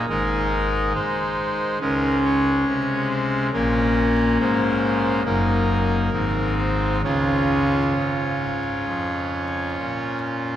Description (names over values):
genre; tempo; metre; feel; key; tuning
classical, chorale-style piece for pipe organ; 65-71 BPM; 4/4; rubato; Db major; A4 = 439 Hz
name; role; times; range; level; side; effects
pipe organ, trumpet; solo; 0.0-10.6 s; Gb1 to Db5; -19 LUFS; equal; none
room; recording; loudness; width
wet cathedral reverb, RT60 5.8 s; dark, warm production, vinyl crackle; -19 LUFS; side -11 dB against mid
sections
0.0-10.6 A section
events
none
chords
0.1 Ab; 1.8 Db5; 3.5 Bbm; 5.3 Ebm/Gb; 6.1 Ab; 7.0 Db